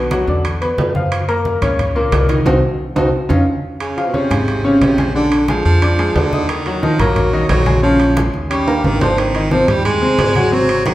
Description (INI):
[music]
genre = latin, salsa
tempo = 179 BPM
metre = 4/4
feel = straight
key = unclear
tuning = A4 = 440 Hz
[part]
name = bright concert grand piano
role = accompaniment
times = 0.0-10.9 s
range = Bb2 to Eb6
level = -17 LUFS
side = left 1 dB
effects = none
[part]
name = upright bass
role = bass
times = 0.0-10.9 s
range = Ab1 to F#2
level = -19 LUFS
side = equal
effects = none
[part]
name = congas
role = percussion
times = 0.1-10.9 s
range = none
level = -23 LUFS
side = equal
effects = none
[part]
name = timbales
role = percussion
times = 0.1-10.9 s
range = none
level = -23 LUFS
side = right 3 dB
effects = none
[part]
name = edgy baritone saxophone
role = second line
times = 3.8-10.9 s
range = Cb3 to Ab3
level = -18 LUFS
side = right 1 dB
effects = none
[sound]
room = wet large studio reverb, RT60 1.4 s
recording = heard from further back in the room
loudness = -13 LUFS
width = side -15 dB against mid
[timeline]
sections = 0.0-3.8 A section; 3.8-10.9 B section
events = band accent 2.5-3.8; drum fill 3.3-3.8, 8.7-9.2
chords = 0.4 Esus2; 1.1 Gbmaj7; 2.5 Cdim; 3.1 Dbadd9/F; 3.8 Dbmaj7; 5.1 Bb7; 6.5 Ebm; 7.8 Bbm7; 8.5 Eb7; 9.2 Abmaj7